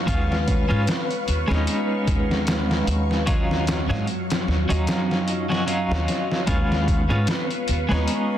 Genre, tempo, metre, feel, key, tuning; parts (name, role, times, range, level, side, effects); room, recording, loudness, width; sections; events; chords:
trip hop; 75 BPM; 4/4; swing 57% on 16ths; A4 = 439 Hz
twelve-string electric guitar; accompaniment; 0.0-8.4 s; Gb3 to Gb4; -25 LUFS; equal; tremolo, tape echo
string machine, cellos; sustained chords; 0.0-8.4 s; Gb3 to Db6; -28 LUFS; equal; phaser, ensemble chorus
upright bass; bass; 0.1-8.1 s; Eb2 to Ab2; -24 LUFS; equal
trip hop sampler-style drum kit; drums; 0.1-8.3 s; hi-hat, kick drum, snare drum; -25 LUFS; equal
light reverb; dense, heavily limited modern master; -20 LUFS; side -11 dB against mid
0.0-6.5 A section; 6.5-8.4 B section
0.1 Db7/Eb; 3.3 Ebm9; 6.5 Db7/Eb